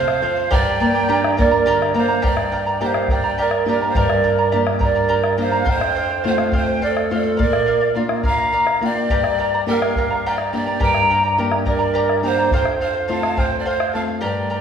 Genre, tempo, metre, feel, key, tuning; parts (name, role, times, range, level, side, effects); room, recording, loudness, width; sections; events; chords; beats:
andean folk, Andean ensemble; 70 BPM (dotted quarters); 6/8; straight; G minor; A4 = 441 Hz
large quena; melody; 0.0-14.6 s; D5 to Bb5; -22 LUFS; right 2 dB
breathy bright pan flute; second line; 0.0-14.6 s; A4 to G5; -21 LUFS; right 4 dB
charango; accompaniment; 0.0-14.6 s; G4 to Bb5; -23 LUFS; right 1 dB
nylon-string guitar; accompaniment; 0.0-14.6 s; F2 to G4; -23 LUFS; left 2 dB
bombo; percussion; 0.1-13.9 s; -24 LUFS; equal
wet recital hall reverb, RT60 1.3 s; recorded in a church or concert hall, studio reverb; -16 LUFS; side -7 dB against mid
0.0-2.2 A section; 2.2-14.6 B section
0.0 F; 0.5 Gm; 5.7 F; 7.4 Bb; 9.1 Gm; 12.5 F
| 0.51 1.37 | 2.23 3.09 | 3.95 4.81 | 5.67 6.53 | 7.39 8.25 | 9.10 9.96 | 10.81 11.67 | 12.53 13.38 | 14.23